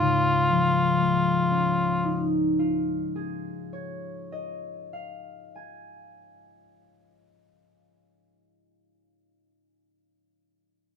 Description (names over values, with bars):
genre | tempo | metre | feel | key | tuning
classical, impressionist duo for cor anglais and harp | 30 BPM (dotted quarters) | 12/8 | rubato | Db major | A4 = 440 Hz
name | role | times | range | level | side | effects
warm cor anglais | melody | 0.0-2.4 s | F4 | -23 LUFS | equal | none
concert harp | accompaniment | 0.0-8.6 s | Db2 to Ab5 | -26 LUFS | left 3 dB | none
room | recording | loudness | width
little or no reverb | close, detailed microphones | -22 LUFS | side -6 dB against mid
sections
0.0-7.1 A section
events
none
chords
0.0 Dbadd9